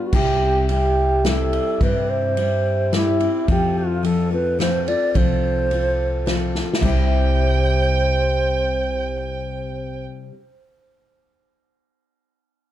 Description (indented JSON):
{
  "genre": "honky-tonk and classic country",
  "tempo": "108 BPM",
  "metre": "3/4",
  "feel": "straight",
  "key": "C major",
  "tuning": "A4 = 440 Hz",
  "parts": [
    { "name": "alto flute", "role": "melody", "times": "0.0-10.0 s", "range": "E4 to D5", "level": "-22 LUFS", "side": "right 2 dB", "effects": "tape echo" },
    { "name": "picked steel-string acoustic guitar", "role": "accompaniment", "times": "0.0-10.4 s", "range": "C3 to B4", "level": "-24 LUFS", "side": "left 5 dB", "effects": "none" },
    { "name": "upright bass", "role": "bass", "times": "0.1-10.0 s", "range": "C2 to G2", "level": "-22 LUFS", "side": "equal", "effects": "none" },
    { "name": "unplugged drum kit", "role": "drums", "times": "0.1-7.0 s", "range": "crash cymbal, kick drum, ride cymbal, snare drum", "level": "-25 LUFS", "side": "equal", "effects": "none" },
    { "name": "rich fiddle", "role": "second line", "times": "6.8-10.0 s", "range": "G5", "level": "-28 LUFS", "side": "right 6 dB", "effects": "none" }
  ],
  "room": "light reverb",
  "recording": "dark, warm production",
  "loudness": "-17 LUFS",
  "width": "side -12 dB against mid",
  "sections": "0.1-6.8 A section; 6.8-10.2 B section",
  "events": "drum fill 6.5",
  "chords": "0.1 C; 3.5 F; 6.8 C",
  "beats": "| 0.14 0.69 1.25 | 1.81 2.37 2.92 | 3.48 4.04 4.60 | 5.15 5.71 6.27 | 6.83 7.38 7.94 | 8.50 9.05 9.61"
}